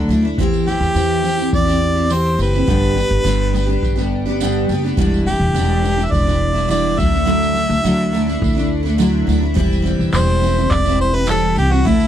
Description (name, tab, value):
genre	acoustic pop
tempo	104 BPM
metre	4/4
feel	straight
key	unclear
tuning	A4 = 441 Hz
part	picked steel-string acoustic guitar	accompaniment	0.0-12.1 s	E2 to G4	-18 LUFS	equal	double-tracked left and right
part	upright bass	bass	0.0-12.1 s	E1 to E2	-19 LUFS	equal	none
part	tambourine	percussion	0.1-12.1 s	none	-36 LUFS	right 26 dB	none
part	booming analog drum machine	drums	0.4-12.0 s	handclaps, kick drum	-22 LUFS	equal	none
part	clear harmonica	melody	0.7-12.1 s	E4 to E5	-20 LUFS	equal	none
room	little or no reverb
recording	dry, close 1970s-style studio recording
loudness	-14 LUFS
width	side -10 dB against mid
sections	0.0-12.1 A section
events	none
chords	0.4 C/E; 2.7 G; 5.0 Em7; 7.0 Dadd9; 9.6 C/E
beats	| 0.38 0.95 1.53 2.10 | 2.68 3.25 3.83 4.40 | 4.97 5.55 6.12 6.70 | 7.27 7.84 8.42 8.99 | 9.56 10.14 10.71 11.28 | 11.86